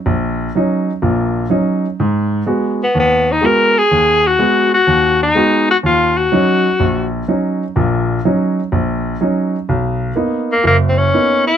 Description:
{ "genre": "jazz", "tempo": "125 BPM", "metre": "4/4", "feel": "swing 68% on 8ths", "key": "Eb minor", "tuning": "A4 = 440 Hz", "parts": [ { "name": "clear baby grand piano", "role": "accompaniment", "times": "0.1-11.5 s", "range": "F#1 to Gb4", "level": "-15 LUFS", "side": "right 1 dB", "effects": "none" }, { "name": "bright tenor saxophone", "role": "melody", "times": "2.8-7.1, 10.5-11.6 s", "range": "A#3 to Bb4", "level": "-12 LUFS", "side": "left 2 dB", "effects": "none" } ], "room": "light reverb", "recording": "close, detailed microphones", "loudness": "-12 LUFS", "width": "side -9 dB against mid", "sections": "0.0-11.6 A section", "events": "none", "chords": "0.0 Ebm7; 2.0 Abm7; 5.8 Ebm7; 9.7 Bmaj7", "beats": "| 0.06 0.54 1.02 1.50 | 1.99 2.47 2.95 3.43 | 3.91 4.39 4.87 5.35 | 5.83 6.31 6.79 7.28 | 7.76 8.24 8.72 9.20 | 9.68 10.16 10.64 11.13" }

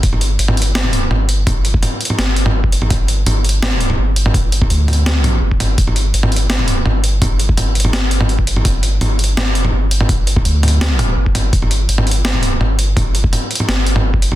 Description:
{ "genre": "half-time drum and bass", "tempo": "167 BPM", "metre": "4/4", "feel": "half-time", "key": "unclear", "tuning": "A4 = 440 Hz", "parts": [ { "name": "saturated sub bass", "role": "bass", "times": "0.0-14.4 s", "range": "G1 to D2", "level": "-16 LUFS", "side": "equal", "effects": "none" }, { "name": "boom bap sampler-style drum kit", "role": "drums", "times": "0.0-14.4 s", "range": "hi-hat, snare drum, toms", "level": "-17 LUFS", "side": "equal", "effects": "none" }, { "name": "electronic kick drum", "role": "drums", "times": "0.0-14.2 s", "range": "none", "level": "-16 LUFS", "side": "equal", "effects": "none" } ], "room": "little or no reverb", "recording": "dense, heavily limited modern master", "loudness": "-13 LUFS", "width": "side -14 dB against mid", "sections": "0.0-14.4 A section", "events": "none", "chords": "none", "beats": "| 0.03 0.39 0.75 1.11 | 1.47 1.83 2.19 2.54 | 2.90 3.26 3.62 3.98 | 4.34 4.70 5.06 5.42 | 5.78 6.14 6.50 6.86 | 7.21 7.58 7.93 8.29 | 8.65 9.01 9.37 9.73 | 10.09 10.45 10.81 11.17 | 11.53 11.89 12.24 12.61 | 12.96 13.32 13.68 14.04" }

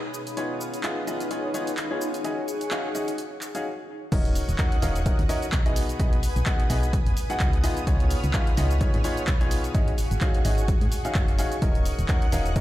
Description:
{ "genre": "piano house", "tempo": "128 BPM", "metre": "4/4", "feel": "swing 56% on 16ths", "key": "Eb minor", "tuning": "A4 = 440 Hz", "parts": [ { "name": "analog string pad", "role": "sustained chords", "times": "0.0-12.6 s", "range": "Db4 to Gb6", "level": "-36 LUFS", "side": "right 1 dB", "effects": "ensemble chorus, sidechain pumping" }, { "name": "ethereal airy pad", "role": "texture", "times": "0.0-12.6 s", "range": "B2 to Gb5", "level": "-37 LUFS", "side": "left 1 dB", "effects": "ensemble chorus, built-in reverb, tremolo, sidechain pumping" }, { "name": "punchy analog drum machine", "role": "drums", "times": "0.1-12.6 s", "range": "cabasa, crash cymbal, handclaps, hi-hat", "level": "-34 LUFS", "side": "equal", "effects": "none" }, { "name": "clear grand piano", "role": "riff", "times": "0.4-12.6 s", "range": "Cb4 to Gb5", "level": "-30 LUFS", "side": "left 1 dB", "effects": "sidechain pumping, ping-pong delay" }, { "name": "solid FM bass", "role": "bass", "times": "4.1-12.6 s", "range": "Eb1 to Ab2", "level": "-25 LUFS", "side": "equal", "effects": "tube saturation, sidechain pumping" }, { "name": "electronic kick drum", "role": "drums", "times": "4.1-12.6 s", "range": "none", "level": "-24 LUFS", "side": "equal", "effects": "none" } ], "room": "little or no reverb", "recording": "played on a big sound system in a bare room, large studio reverb", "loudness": "-22 LUFS", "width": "side -15 dB against mid", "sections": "0.0-4.1 A section; 4.1-12.6 B section", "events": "drop 4.1-12.6", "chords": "0.1 Db9; 2.2 Ab7sus4; 4.1 Ebm7; 5.8 B6; 7.6 Db9; 9.7 Ab7sus4; 11.6 Ebm7", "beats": "| 0.37 0.84 1.31 1.78 | 2.25 2.71 3.18 3.65 | 4.12 4.59 5.06 5.53 | 6.00 6.46 6.93 7.40 | 7.87 8.34 8.81 9.28 | 9.75 10.21 10.68 11.15 | 11.62 12.09 12.56" }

